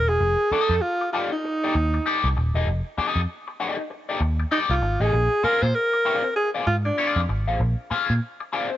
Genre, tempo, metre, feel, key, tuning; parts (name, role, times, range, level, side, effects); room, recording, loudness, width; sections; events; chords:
funk; 98 BPM; 4/4; swing 60% on 16ths; A4 = 440 Hz
breathy alto saxophone; melody; 0.0-7.3 s; D4 to C5; -22 LUFS; right 1 dB
vintage muted picked electric bass; bass; 0.0-8.2 s; Eb1 to Bb2; -22 LUFS; equal
electric guitar at the edge of break-up; accompaniment; 0.5-8.7 s; C4 to F5; -26 LUFS; left 4 dB; wah
light reverb; nothing above 7.7 kHz; -21 LUFS; side -13 dB against mid
0.0-8.8 A section
break 0.0
0.2 F13 (rootless); 5.1 Bb9